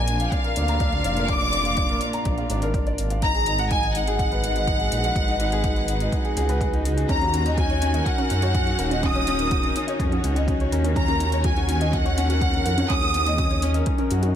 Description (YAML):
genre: piano and strings electronica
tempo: 124 BPM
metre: 4/4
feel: straight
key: Eb minor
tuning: A4 = 439 Hz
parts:
  - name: warm symphonic violin section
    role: melody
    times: 0.0-13.6 s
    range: F5 to Eb6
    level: -26 LUFS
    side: left 1 dB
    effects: tape echo
  - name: warm string quartet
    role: sustained chords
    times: 0.0-14.4 s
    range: Bb2 to D5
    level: -32 LUFS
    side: left 1 dB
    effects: sidechain pumping
  - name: warm upright piano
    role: riff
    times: 0.0-14.4 s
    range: Db4 to Bb5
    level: -27 LUFS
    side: left 2 dB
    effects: tape echo
  - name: dark detuned saw bass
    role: bass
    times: 0.0-14.4 s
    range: Eb1 to Gb2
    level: -25 LUFS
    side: right 1 dB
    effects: tube saturation, sidechain pumping
  - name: electronic hi-hat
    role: drums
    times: 0.1-14.3 s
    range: none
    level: -36 LUFS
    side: left 2 dB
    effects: overdrive
  - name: electronic kick drum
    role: drums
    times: 0.3-14.0 s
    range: none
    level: -26 LUFS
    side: equal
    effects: overdrive
  - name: warbly dusty pluck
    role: arpeggios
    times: 7.1-14.3 s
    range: Db4 to Eb5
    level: -33 LUFS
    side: right 2 dB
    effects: chorus, sidechain pumping, tape echo
room: light reverb, small room ambience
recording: none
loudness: -20 LUFS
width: side -9 dB against mid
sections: 0.0-14.4 A section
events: none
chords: 0.0 Bb; 3.2 Abm7; 7.1 Ebm7